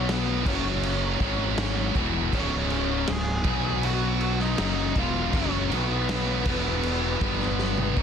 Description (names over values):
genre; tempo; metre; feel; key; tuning
quiet-loud alternative rock; 80 BPM; 4/4; straight; unclear; A4 = 440 Hz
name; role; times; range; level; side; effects
octave-fuzz lead guitar; melody; 0.0-7.9 s; Cb4 to Ab4; -32 LUFS; equal; distortion
heavy high-gain guitar; riff; 0.0-8.0 s; Db2 to Cb4; -30 LUFS; right 15 dB; distortion
overdriven electric guitar; riff; 0.0-8.0 s; Db2 to Cb4; -31 LUFS; left 13 dB; none
fuzz fingered electric bass; bass; 0.0-8.0 s; Db1 to Cb2; -29 LUFS; equal; overdrive
raw garage drum kit; drums; 0.1-8.0 s; crash cymbal, kick drum, snare drum, toms; -28 LUFS; equal; none
room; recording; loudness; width
little or no reverb; dense, heavily limited modern master; -23 LUFS; side -7 dB against mid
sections
0.0-8.0 A section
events
drum fill 7.6-8.0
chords
0.5 Gb5; 1.2 Ab5; 2.0 Db5; 3.5 Cb5; 4.6 Dbm11; 5.7 Cb5; 6.5 E5; 7.2 G5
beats
0.09 0.84 1.59 | 2.34 3.09 3.84 4.58 | 5.33 6.08 6.84 7.59